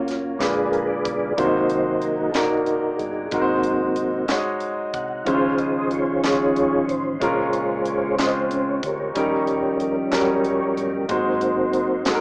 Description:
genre	slow gospel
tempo	62 BPM (dotted quarters)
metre	6/8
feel	straight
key	Db major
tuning	A4 = 439 Hz
part	clear baby grand piano	accompaniment	0.0-12.2 s	Ab2 to Eb5	-24 LUFS	equal	none
part	mellow tonewheel organ	sustained chords	0.0-12.2 s	C3 to Gb5	-21 LUFS	equal	fast rotary speaker, chorus vibrato
part	hollow-body short-scale fingered electric bass	bass	0.0-12.2 s	Gb1 to Eb2	-40 LUFS	equal	none
part	crisp fusion drum kit	drums	0.1-12.2 s	hi-hat, kick drum, snare drum	-28 LUFS	equal	none
part	group handclap	percussion	0.4-12.2 s	none	-31 LUFS	equal	none
room	moderate studio reverb, RT60 0.6 s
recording	rough home demo mix, small speaker sound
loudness	-19 LUFS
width	side -34 dB against mid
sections	0.0-12.2 A section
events	tonewheel organ solo 0.0-12.2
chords	0.4 Bb7b9; 1.4 Cm7b5; 3.3 Ab7; 5.3 Dbmaj7; 7.2 Bbm7; 9.2 Eb7; 11.1 Ab7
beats	0.41 | 1.38 2.35 | 3.33 4.30 | 5.27 6.25 | 7.22 8.19 | 9.16 10.13 | 11.10 12.07

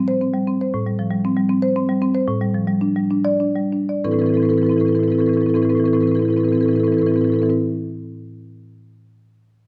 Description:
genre	classical, contemporary piece for solo marimba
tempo	60-81 BPM (dotted quarters)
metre	6/8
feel	rubato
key	A minor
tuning	A4 = 439 Hz
part	marimba with medium mallets	solo	0.0-7.5 s	A2 to D5	-19 LUFS	equal	none
room	moderate recital hall reverb, RT60 1.4 s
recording	none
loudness	-19 LUFS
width	mono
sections	0.8-4.0 A section; 4.0-7.8 B section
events	slowing down 0.0-4.0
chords	0.0 Am7; 2.3 A7sus4; 4.0 Amadd9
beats	| 0.75 1.50 | 2.27 3.10 | 4.05 4.97 | 5.90 6.83

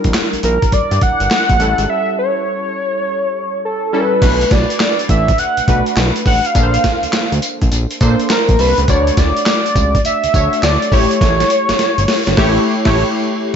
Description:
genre	R&B, new jack swing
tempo	103 BPM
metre	4/4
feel	swing 65% on 16ths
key	unclear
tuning	A4 = 438 Hz
part	warm analog keys	accompaniment	0.0-13.6 s	G3 to D5	-20 LUFS	equal	chorus, slapback echo
part	fat analog bass	bass	0.0-13.0 s	G1 to Bb2	-17 LUFS	equal	none
part	boom bap sampler-style drum kit	drums	0.0-13.0 s	crash cymbal, handclaps, hi-hat, kick drum, snare drum, tambourine	-16 LUFS	equal	vintage 12-bit sampler grit
part	octave-doubled lead	melody	0.4-13.0 s	A4 to F#5	-16 LUFS	equal	chorus, slapback echo
room	moderate recital hall reverb, RT60 1.5 s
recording	big arena sound, nothing above 7.7 kHz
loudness	-12 LUFS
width	side -7 dB against mid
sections	0.0-4.2 A section; 4.2-13.5 B section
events	break 1.9-4.2; drum fill 11.2-13.5; band accent 12.4-13.5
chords	0.0 Gm6; 1.6 A7; 4.2 Bm7; 6.6 Bbmaj9; 8.9 Dmaj7; 10.9 A7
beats	0.14 0.73 1.31 | 1.89 2.47 3.06 3.64 | 4.22 4.80 5.39 5.97 | 6.55 7.13 7.72 8.30 | 8.88 9.46 10.05 10.63 | 11.21 11.79 12.38 12.96 | 13.54

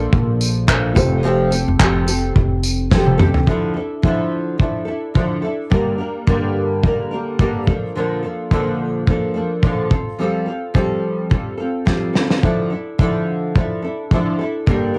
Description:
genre	acoustic pop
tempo	107 BPM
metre	4/4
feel	swing 55% on 16ths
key	D minor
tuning	A4 = 440 Hz
part	felt-muted upright piano	accompaniment	0.0-3.5 s	A3 to D5	-29 LUFS	equal	cassette tape
part	nylon-string guitar	accompaniment	0.0-15.0 s	G2 to Bb4	-22 LUFS	equal	double-tracked, cassette tape
part	upright bass	bass	0.0-3.5 s	F1 to C2	-22 LUFS	equal	none
part	loose indie drum kit	drums	0.1-14.8 s	handclaps, kick drum, snare drum, tambourine, toms	-19 LUFS	equal	cassette tape
room	little or no reverb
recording	home recording on cassette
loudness	-18 LUFS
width	mono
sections	0.0-3.5 A section; 3.5-15.0 B section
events	drum fill 2.9-3.5, 11.9-12.4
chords	0.0 Bbmaj7; 1.0 Fadd9; 3.5 Dmadd9; 5.7 Gm; 7.7 Bbmaj7; 9.9 Fadd9; 12.4 Dmadd9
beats	0.12 0.68 | 1.24 1.80 2.36 2.92 | 3.48 4.04 4.59 5.15 | 5.71 6.27 6.83 7.39 | 7.95 8.51 9.07 9.63 | 10.19 10.75 11.31 11.87 | 12.43 12.99 13.55 14.11 | 14.67

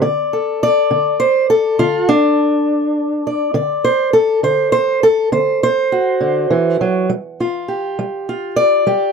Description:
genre	acoustic country blues, solo or duo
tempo	68 BPM (dotted quarters)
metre	12/8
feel	straight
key	unclear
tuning	A4 = 442 Hz
part	fingerpicked steel-string acoustic guitar	solo	0.0-9.1 s	D3 to D5	-13 LUFS	equal	none
room	little or no reverb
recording	dry, close 1970s-style studio recording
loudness	-13 LUFS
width	side -5 dB against mid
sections	0.0-3.5 A section; 3.5-9.1 B section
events	steel-string acoustic guitar solo 3.5-9.1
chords	0.0 D5; 3.5 D7; 7.1 G5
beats	| 0.02 0.90 1.78 2.67 | 3.55 4.43 5.32 6.20 | 7.08 7.97 8.85

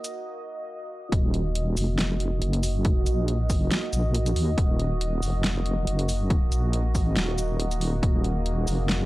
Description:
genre	deep dubstep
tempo	139 BPM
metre	4/4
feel	swing 54% on 16ths, half-time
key	Eb minor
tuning	A4 = 440 Hz
part	deep dark ambient pad	sustained chords	0.0-9.1 s	Bb3 to Eb5	-32 LUFS	right 2 dB	chorus, built-in reverb
part	deep house drum kit	drums	0.0-9.0 s	hi-hat, shaker, snare drum	-30 LUFS	equal	overdrive
part	deep soft wobble bass	bass	1.1-9.1 s	Eb1 to Eb2	-25 LUFS	equal	chorus
part	electronic kick drum	drums	1.1-8.1 s	none	-24 LUFS	equal	overdrive
room	digital ambience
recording	dry, gritty hardware recording, cassette tape, high-pass filter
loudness	-22 LUFS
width	side -18 dB against mid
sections	0.0-1.1 A section; 1.1-9.1 B section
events	build-up 0.0-1.1; filter sweep 0.0-1.1; break 0.3-1.1; drop 1.1-9.1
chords	0.0 Ebm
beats	0.26 0.69 | 1.12 1.55 1.99 2.42 | 2.85 3.28 3.71 4.14 | 4.58 5.01 5.44 5.87 | 6.30 6.73 7.17 7.60 | 8.03 8.46 8.89

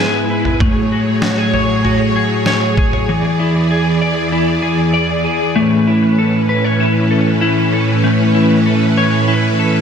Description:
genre	dream pop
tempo	97 BPM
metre	4/4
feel	straight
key	unclear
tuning	A4 = 440 Hz
part	string machine, violas	sustained chords	0.0-9.8 s	E2 to D5	-15 LUFS	right 1 dB	ensemble chorus
part	clean electric guitar	arpeggios	0.0-9.8 s	E3 to D5	-15 LUFS	left 2 dB	wide subtle chorus, ping-pong delay
part	trip hop sampler-style drum kit	drums	0.5-3.1 s	kick drum, snare drum, toms	-18 LUFS	equal	none
room	moderate lush hall reverb, RT60 2.0 s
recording	none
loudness	-12 LUFS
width	side -7 dB against mid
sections	0.0-5.6 A section; 5.6-9.8 B section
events	none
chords	0.0 E/G#; 0.6 F#madd9/A; 3.1 E7; 5.6 Aadd9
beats	| 0.61 1.23 1.85 2.47 | 3.09 3.71 4.32 4.94 | 5.56 6.18 6.80 7.42 | 8.04 8.65 9.27

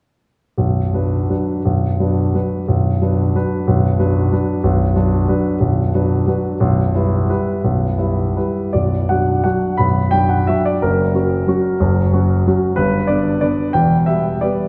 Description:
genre	classical, piano waltz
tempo	147-197 BPM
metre	3/4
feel	rubato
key	B minor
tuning	A4 = 440 Hz
part	warm grand piano	solo	0.6-14.7 s	B0 to B5	-17 LUFS	equal	none
room	wet church reverb, RT60 3.3 s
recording	recorded in a church or concert hall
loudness	-17 LUFS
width	mono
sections	0.6-8.7 A section; 8.7-14.7 B section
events	none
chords	0.6 Bm; 6.6 Em/B; 8.7 Bm; 10.8 F#; 12.8 G; 13.7 Em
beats	| 0.58 0.94 1.30 | 1.65 1.99 2.34 | 2.68 3.01 3.35 | 3.67 3.99 4.32 | 4.63 4.96 5.28 | 5.60 5.93 6.27 | 6.60 6.94 7.29 | 7.64 7.98 8.36 | 8.75 9.10 9.45 | 9.79 10.12 10.48 | 10.81 11.14 11.47 | 11.80 12.12 12.46 | 12.77 13.09 13.42 | 13.74 14.07 14.43

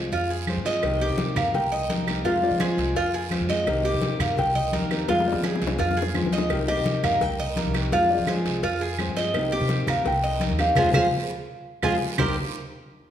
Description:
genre	latin, Cuban son and guajira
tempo	169 BPM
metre	4/4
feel	straight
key	C minor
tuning	A4 = 440 Hz
part	nylon-string guitar	melody	0.0-12.0 s	Ab4 to G5	-27 LUFS	left 1 dB	none
part	fingerpicked steel-string acoustic guitar	accompaniment	0.0-12.3 s	C3 to G4	-30 LUFS	left 2 dB	none
part	Cuban tres	arpeggios	0.0-12.4 s	C4 to Eb5	-28 LUFS	right 3 dB	none
part	upright bass	bass	0.0-12.3 s	C2 to F3	-29 LUFS	equal	none
part	congas	percussion	0.1-12.3 s	none	-30 LUFS	left 1 dB	none
part	guiro	percussion	0.1-12.3 s	none	-37 LUFS	right 7 dB	none
part	claves	percussion	0.5-12.3 s	none	-36 LUFS	right 7 dB	none
part	cowbell and bongos	percussion	0.8-12.3 s	none	-34 LUFS	left 5 dB	none
room	wet recital hall reverb, RT60 1.5 s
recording	small room ambience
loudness	-21 LUFS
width	side -10 dB against mid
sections	0.0-6.5 A section; 6.5-12.2 B section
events	drum fill 5.1-6.5, 11.1-12.2; band accent 10.8-12.2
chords	0.0 Fm; 0.8 Cm7; 2.2 Fm; 3.7 Cm7; 5.1 Fm; 6.5 Cm7; 7.9 Fm; 9.3 Cm7; 10.8 Fm; 12.2 Cm7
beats	0.12 0.47 | 0.83 1.18 1.54 1.89 | 2.25 2.60 2.96 3.31 | 3.67 4.02 4.38 4.73 | 5.09 5.44 5.80 6.15 | 6.51 6.86 7.22 7.57 | 7.93 8.28 8.64 8.99 | 9.35 9.70 10.06 10.41 | 10.77 11.12 11.48 11.83 | 12.19

